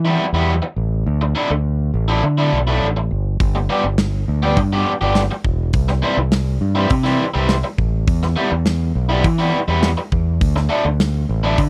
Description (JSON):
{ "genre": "indie rock", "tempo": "103 BPM", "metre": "4/4", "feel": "straight", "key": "G major", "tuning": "A4 = 440 Hz", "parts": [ { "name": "biting overdriven guitar", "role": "riff", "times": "0.0-11.6 s", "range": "D3 to G4", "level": "-21 LUFS", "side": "equal", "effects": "none" }, { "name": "growling fingered electric bass", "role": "bass", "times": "0.0-11.7 s", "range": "E1 to E3", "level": "-20 LUFS", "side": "equal", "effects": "overdrive" }, { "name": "big rock drum kit", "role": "drums", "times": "3.4-11.7 s", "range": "hi-hat, kick drum, snare drum", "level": "-23 LUFS", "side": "equal", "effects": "none" } ], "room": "little or no reverb", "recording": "dry, close 1970s-style studio recording", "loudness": "-18 LUFS", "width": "mono", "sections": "0.0-11.7 A section", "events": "none", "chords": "0.0 Em; 1.1 Dsus2; 3.4 G; 5.7 C; 8.1 Em; 10.4 Dsus2" }